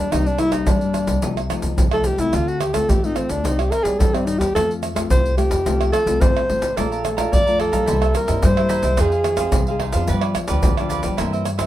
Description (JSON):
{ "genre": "samba and choro", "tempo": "108 BPM", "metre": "4/4", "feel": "straight", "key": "unclear", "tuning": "A4 = 435 Hz", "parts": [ { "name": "breathy alto saxophone", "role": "melody", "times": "0.0-9.8 s", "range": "C4 to D5", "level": "-21 LUFS", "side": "equal", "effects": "none" }, { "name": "nylon-string guitar", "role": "accompaniment", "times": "0.0-11.7 s", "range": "G2 to D5", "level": "-26 LUFS", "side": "left 5 dB", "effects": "none" }, { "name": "upright bass", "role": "bass", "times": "0.0-11.7 s", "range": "G1 to G2", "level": "-23 LUFS", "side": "equal", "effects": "none" }, { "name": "tube shaker, surdo, pandeiro and tamborim", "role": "percussion", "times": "0.1-11.7 s", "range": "none", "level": "-22 LUFS", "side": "right 1 dB", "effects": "none" }, { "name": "cavaquinho", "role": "accompaniment", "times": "6.8-11.7 s", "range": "Eb4 to Bb5", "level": "-27 LUFS", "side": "right 6 dB", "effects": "none" } ], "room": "light reverb", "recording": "minimal, uncompressed stereo recording", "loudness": "-17 LUFS", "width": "side -13 dB against mid", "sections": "0.0-11.7 A section", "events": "alto saxophone solo 0.0-11.7", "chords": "0.1 Cm7; 1.2 F7/C; 2.3 Dm7; 3.4 Cmadd9; 4.6 F; 6.8 Bbmaj7; 7.9 C7; 9.0 Fm7; 10.1 G7" }